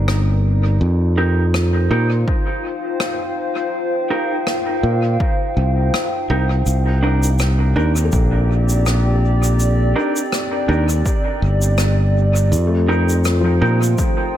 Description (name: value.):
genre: ambient dub.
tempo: 82 BPM.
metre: 4/4.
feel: swing 56% on 16ths.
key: C dorian.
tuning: A4 = 440 Hz.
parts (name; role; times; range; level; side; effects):
warbly tape-like pad; sustained chords; 0.0-14.4 s; C4 to G5; -23 LUFS; equal; chorus, built-in reverb.
modern bright fingered electric bass; bass; 0.0-13.9 s; G1 to Bb2; -15 LUFS; equal; none.
rim click and shaker; drums; 0.1-14.1 s; none; -27 LUFS; left 2 dB; dub echo.
mellow electric guitar; stabs; 1.2-13.8 s; D4 to Bb4; -25 LUFS; right 2 dB; dub echo.
electronic kick drum; drums; 2.3-14.1 s; none; -19 LUFS; equal; overdrive.
felt-muted upright piano; arpeggios; 8.0-14.4 s; F3 to A4; -28 LUFS; left 4 dB; tape echo.
room: light reverb, small room ambience.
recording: echo-heavy mix.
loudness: -15 LUFS.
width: side -11 dB against mid.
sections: 0.0-14.4 A section.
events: none.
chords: 0.0 Cm7; 0.8 F9sus4; 6.7 Cm7.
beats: 0.08 | 0.81 1.54 2.28 3.01 | 3.74 4.47 5.20 5.94 | 6.67 7.40 8.13 8.86 | 9.59 10.33 11.06 11.79 | 12.52 13.25 13.98.